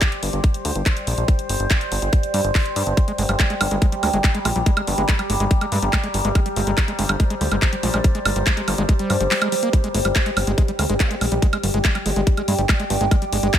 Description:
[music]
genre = psychedelic trance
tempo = 142 BPM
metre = 4/4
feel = straight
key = G phrygian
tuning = A4 = 441 Hz
[part]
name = overtone-sweeping drone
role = sustained chords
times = 0.0-13.6 s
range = G3 to C5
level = -25 LUFS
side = equal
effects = chorus, built-in reverb, vintage 12-bit sampler grit, sidechain pumping
[part]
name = electronic kick drum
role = drums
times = 0.0-13.6 s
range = none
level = -18 LUFS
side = equal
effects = small room reverb
[part]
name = garage drum kit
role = drums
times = 0.0-13.6 s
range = handclaps, hi-hat, woodblock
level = -24 LUFS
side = equal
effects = small room reverb
[part]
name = warbly tape-like pad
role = texture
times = 0.8-13.6 s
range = G4 to Bb5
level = -32 LUFS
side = right 2 dB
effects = chorus, built-in reverb, sidechain pumping
[part]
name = fat analog bass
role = bass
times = 0.2-13.5 s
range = G1 to G2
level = -22 LUFS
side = equal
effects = none
[part]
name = overdriven acid bass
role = riff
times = 3.0-13.6 s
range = F3 to Bb3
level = -26 LUFS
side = equal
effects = distortion, auto-pan, sidechain pumping, dub echo
[part]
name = vowel-sweep wobble bass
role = second line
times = 10.4-12.2 s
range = G3 to C4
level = -37 LUFS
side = right 3 dB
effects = none
[sound]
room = digital ambience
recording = none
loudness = -17 LUFS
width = side -10 dB against mid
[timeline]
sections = 0.0-13.6 A section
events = fade-in on ambient pad 0.0-13.6; kick drops out 9.3-9.7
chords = 0.0 G5

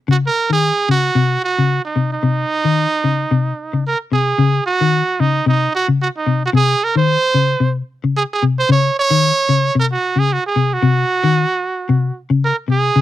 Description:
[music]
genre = afrobeat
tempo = 112 BPM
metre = 4/4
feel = swing 55% on 16ths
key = unclear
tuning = A4 = 435 Hz
[part]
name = brilliant trumpet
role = melody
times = 0.1-13.0 s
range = Eb4 to Db5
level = -17 LUFS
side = right 4 dB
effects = none
[part]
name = semi-hollow electric guitar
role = arpeggios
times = 0.1-13.0 s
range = C3 to Eb3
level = -15 LUFS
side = left 4 dB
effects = analog chorus
[sound]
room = light reverb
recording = dry, close 1970s-style studio recording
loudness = -14 LUFS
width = side -13 dB against mid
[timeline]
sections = 0.0-4.4 A section; 4.4-13.0 B section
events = none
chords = 0.0 Bbmadd9/C (rootless)

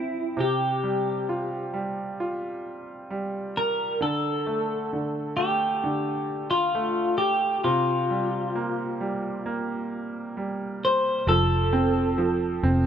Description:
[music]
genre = pop ballad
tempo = 66 BPM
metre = 4/4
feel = straight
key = unclear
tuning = A4 = 441 Hz
[part]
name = twelve-string electric guitar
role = melody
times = 0.0-12.9 s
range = E4 to C5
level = -25 LUFS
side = left 1 dB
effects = tape echo
[part]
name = bright concert grand piano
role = accompaniment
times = 0.0-12.9 s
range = C3 to F4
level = -28 LUFS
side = right 2 dB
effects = none
[part]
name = vintage muted fingered electric bass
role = bass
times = 11.3-12.9 s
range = F1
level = -25 LUFS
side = equal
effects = none
[sound]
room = light reverb, small room ambience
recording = rough home demo mix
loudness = -24 LUFS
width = side -8 dB against mid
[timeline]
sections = 0.0-11.3 A section; 11.3-12.9 B section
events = none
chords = 0.4 Csus4; 4.0 D5; 7.6 C7sus4; 11.3 F

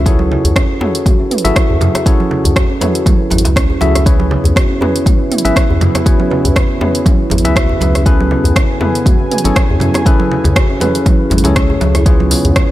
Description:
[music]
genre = afro house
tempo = 120 BPM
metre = 4/4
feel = swing 55% on 16ths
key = C# minor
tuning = A4 = 440 Hz
[part]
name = tine electric piano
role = stabs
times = 0.0-12.7 s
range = C#4 to E5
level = -18 LUFS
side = left 3 dB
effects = sidechain pumping, tape echo
[part]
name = round analog bass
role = bass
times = 0.0-12.5 s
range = G#1 to F#2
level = -15 LUFS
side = equal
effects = sidechain pumping
[part]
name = kalimba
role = arpeggios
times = 0.1-12.7 s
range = G#3 to C#5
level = -20 LUFS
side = right 3 dB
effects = sidechain pumping, low-pass filter, tape echo
[part]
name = deep house drum kit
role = drums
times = 0.1-12.7 s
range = hi-hat, rim click, toms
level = -19 LUFS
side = right 1 dB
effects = overdrive
[part]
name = electronic kick drum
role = drums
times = 0.1-12.7 s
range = none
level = -12 LUFS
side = equal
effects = overdrive
[part]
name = congas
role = percussion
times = 0.2-12.4 s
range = none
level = -20 LUFS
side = right 4 dB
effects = none
[part]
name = djembe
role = percussion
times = 0.5-12.5 s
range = none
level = -20 LUFS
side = left 1 dB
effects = none
[part]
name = warm analog pad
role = sustained chords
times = 4.1-12.7 s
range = C#3 to G#5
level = -23 LUFS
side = right 2 dB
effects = chorus, sidechain pumping
[sound]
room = little or no reverb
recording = none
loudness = -10 LUFS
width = side -15 dB against mid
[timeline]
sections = 0.0-12.7 A section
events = none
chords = 0.1 F#m9; 4.1 C#m7; 8.1 Amaj9; 12.1 C#7

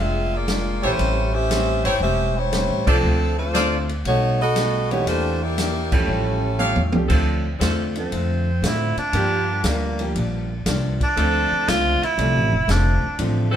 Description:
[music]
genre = jazz, big band swing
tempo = 118 BPM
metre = 4/4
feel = swing 68% on 8ths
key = D minor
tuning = A4 = 438 Hz
[part]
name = warm saxophone section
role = melody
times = 0.0-7.0 s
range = F3 to G5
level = -23 LUFS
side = equal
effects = none
[part]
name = vintage hollow-body jazz guitar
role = accompaniment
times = 0.0-13.6 s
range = G2 to G4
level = -29 LUFS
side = left 2 dB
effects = none
[part]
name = upright bass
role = bass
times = 0.0-13.6 s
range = E1 to A2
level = -23 LUFS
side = equal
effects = none
[part]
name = vintage drum kit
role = drums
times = 0.5-13.4 s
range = crash cymbal, hi-hat, kick drum, ride cymbal, snare drum, toms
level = -27 LUFS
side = equal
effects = none
[part]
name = clear concert grand piano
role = accompaniment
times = 0.8-13.6 s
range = D3 to C5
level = -28 LUFS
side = right 2 dB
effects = none
[part]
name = clear trumpet section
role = stabs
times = 0.8-6.8 s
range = F4 to F5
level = -24 LUFS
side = equal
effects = none
[part]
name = bright saxophone section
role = sustained chords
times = 7.1-13.6 s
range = F3 to A4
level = -29 LUFS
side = right 1 dB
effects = none
[part]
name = clear tenor saxophone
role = melody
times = 8.0-13.2 s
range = Bb3 to F4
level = -22 LUFS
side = right 1 dB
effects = none
[sound]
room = moderate stone room reverb, RT60 1.3 s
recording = band playing live in one room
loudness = -18 LUFS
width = side -9 dB against mid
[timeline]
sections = 0.0-7.1 A section; 7.1-13.6 B section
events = band accent 2.8, 5.8; drum fill 6.6-7.1; tenor saxophone solo 7.1-13.6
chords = 0.0 Bb7; 1.0 A7#9; 3.0 Dm7; 4.1 B7b13; 5.1 Em7b5; 6.1 A7b13; 7.1 Dm7; 9.1 Gm7; 11.2 Dm7

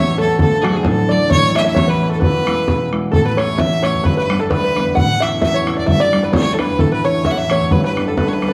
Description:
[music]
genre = celtic folk, Celtic polka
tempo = 131 BPM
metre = 2/4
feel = swing 55% on 8ths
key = E mixolydian, A mixolydian from 3.1 s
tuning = A4 = 441 Hz
[part]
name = bright fiddle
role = melody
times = 0.0-8.5 s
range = F#4 to F#5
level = -21 LUFS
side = equal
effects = none
[part]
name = open-back banjo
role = second line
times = 0.0-8.5 s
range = F#4 to F#5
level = -24 LUFS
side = equal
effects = none
[part]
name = concert harp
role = accompaniment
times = 0.0-8.5 s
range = D1 to E4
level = -21 LUFS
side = equal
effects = none
[part]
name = bodhran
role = percussion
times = 0.4-8.5 s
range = none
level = -21 LUFS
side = equal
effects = none
[sound]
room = wet recital hall reverb, RT60 1.4 s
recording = dark, warm production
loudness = -16 LUFS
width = mono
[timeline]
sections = 0.0-3.1 A section; 3.1-8.5 B section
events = none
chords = 0.4 D; 1.3 Aadd9; 2.2 E; 3.1 A; 4.0 G; 5.0 A; 5.9 G; 6.8 A; 7.7 G

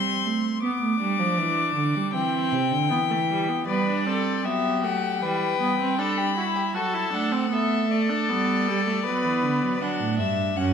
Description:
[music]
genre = classical, baroque-style fugue for string quartet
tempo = 78 BPM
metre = 4/4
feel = straight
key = C major, G major from 3.7 s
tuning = A4 = 442 Hz
[part]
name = rich violin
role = melody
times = 0.0-10.7 s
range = D5 to D6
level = -27 LUFS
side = left 9 dB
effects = none
[part]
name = rich viola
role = accompaniment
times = 0.0-10.7 s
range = G3 to F#4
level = -28 LUFS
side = right 2 dB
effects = none
[part]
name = dark cello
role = bass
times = 0.0-10.7 s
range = F#2 to B3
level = -26 LUFS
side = right 5 dB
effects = none
[part]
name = warm violin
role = second line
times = 3.7-9.8 s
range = F#4 to B4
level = -28 LUFS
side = left 3 dB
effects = none
[sound]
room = wet recital hall reverb, RT60 1.4 s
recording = minimal, uncompressed stereo recording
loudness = -22 LUFS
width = side -7 dB against mid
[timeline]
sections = 0.0-3.7 A section; 3.7-10.7 B section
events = none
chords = 0.0 Am; 0.6 G; 2.1 C; 3.7 G; 5.2 Em; 6.8 D/F#; 8.3 G; 9.8 D

